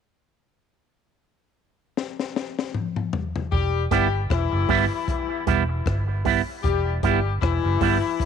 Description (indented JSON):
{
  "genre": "roots reggae",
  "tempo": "77 BPM",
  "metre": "4/4",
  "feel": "swing 57% on 16ths",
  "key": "E minor",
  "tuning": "A4 = 443 Hz",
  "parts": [
    { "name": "crunchy breakbeat drum kit", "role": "drums", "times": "2.0-8.3 s", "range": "hi-hat, kick drum, rim click, snare drum, toms", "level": "-28 LUFS", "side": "left 3 dB", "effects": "none" },
    { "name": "clear horn section", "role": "second line", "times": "3.5-8.3 s", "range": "E3 to G4", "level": "-26 LUFS", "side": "left 11 dB", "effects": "dub echo" },
    { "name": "vintage muted fingered electric bass", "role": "bass", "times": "3.5-8.0 s", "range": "E1 to G1", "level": "-24 LUFS", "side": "right 1 dB", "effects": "none" },
    { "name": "electric guitar with an envelope filter", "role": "accompaniment", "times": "3.9-8.0 s", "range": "G3 to E4", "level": "-25 LUFS", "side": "right 14 dB", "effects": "dub echo" }
  ],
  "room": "small room ambience",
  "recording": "1960s-style stereo with parts hard left and right",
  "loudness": "-21 LUFS",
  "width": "side -7 dB against mid",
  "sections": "0.4-3.5 A section; 3.5-8.3 B section",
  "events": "drum fill 2.0-3.5",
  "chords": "0.4 N.C.; 3.5 Em"
}